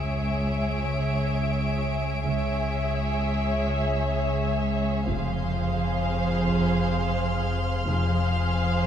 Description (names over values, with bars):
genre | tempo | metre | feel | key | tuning
cinematic, suspense film score | 64 BPM | 3/4 | straight | unclear | A4 = 439 Hz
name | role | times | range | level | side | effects
muted studio violin section | melody | 0.0-8.9 s | Fb5 to F5 | -32 LUFS | left 1 dB | none
muted studio violin section | second line | 0.0-8.9 s | Ab4 to Db5 | -31 LUFS | equal | none
marimba with soft mallets | riff | 0.0-8.9 s | F2 to Db3 | -29 LUFS | left 3 dB | none
muted studio cello section | bass | 0.0-8.9 s | Db2 to F2 | -29 LUFS | right 2 dB | none
muted studio double bass section | bass | 0.0-8.8 s | F1 to Db2 | -34 LUFS | right 3 dB | none
warm sub bass | drone | 0.0-8.9 s | F1 to Db2 | -32 LUFS | right 1 dB | none
muted studio violin section | texture | 0.0-8.9 s | Db5 to D7 | -36 LUFS | left 1 dB | none
taiko ensemble | drums | 5.1-6.9 s | none | barely audible | none | none
room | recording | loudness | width
moderate concert hall reverb, RT60 2.5 s | none | -23 LUFS | side -9 dB against mid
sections
0.0-8.9 A section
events
none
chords
0.0 Dbm; 5.1 Fm